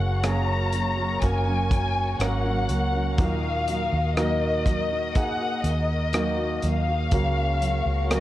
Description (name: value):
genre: pop ballad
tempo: 61 BPM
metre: 4/4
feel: straight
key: F# major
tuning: A4 = 440 Hz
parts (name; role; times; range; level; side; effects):
- dark studio violin section; melody; 0.0-8.2 s; D#5 to A#5; -28 LUFS; left 3 dB; none
- clear concert grand piano; accompaniment; 0.0-8.2 s; A#2 to A#4; -30 LUFS; right 2 dB; none
- warm studio string section; sustained chords; 0.0-8.2 s; F#4 to D#6; -37 LUFS; left 1 dB; none
- nylon-string guitar; arpeggios; 0.0-8.2 s; F#2 to F#4; -32 LUFS; right 2 dB; none
- vintage muted fingered electric bass; bass; 0.0-8.2 s; F#1 to D#2; -26 LUFS; equal; none
- modern studio drum kit; drums; 0.2-8.2 s; hi-hat, kick drum, rim click; -26 LUFS; equal; none
- swell; sound effects; 7.7-8.2 s; none; -37 LUFS; left 4 dB; none
room: light reverb, small room ambience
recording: worn, warbling old tape, cassette tape, warbly pitch drift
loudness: -22 LUFS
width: side -14 dB against mid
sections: 0.0-8.2 A section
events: swell 7.7-8.2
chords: 0.0 F#; 3.2 D#m; 7.1 F#/C#